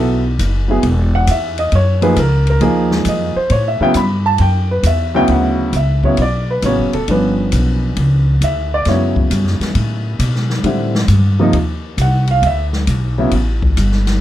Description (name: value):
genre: jazz piano trio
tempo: 134 BPM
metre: 4/4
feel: swing 68% on 8ths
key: unclear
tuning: A4 = 440 Hz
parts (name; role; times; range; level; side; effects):
- warm baby grand piano; melody; 0.0-13.3 s; D2 to B5; -16 LUFS; right 1 dB; none
- upright bass; bass; 0.0-14.2 s; D1 to B2; -15 LUFS; equal; none
- open jazz drum kit; drums; 0.4-14.2 s; hi-hat, kick drum, ride cymbal, snare drum; -23 LUFS; left 2 dB; none
room: light reverb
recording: dark, warm production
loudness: -13 LUFS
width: side -12 dB against mid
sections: 0.0-5.3 A section; 5.3-14.2 A section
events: grand piano solo 0.0-14.2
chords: 0.0 B5; 0.8 N.C.; 1.7 F#maj13; 3.5 A9; 5.3 D69; 7.1 G7#11; 8.9 F#m7; 10.6 Am7; 11.5 Cdim; 12.4 Gadd9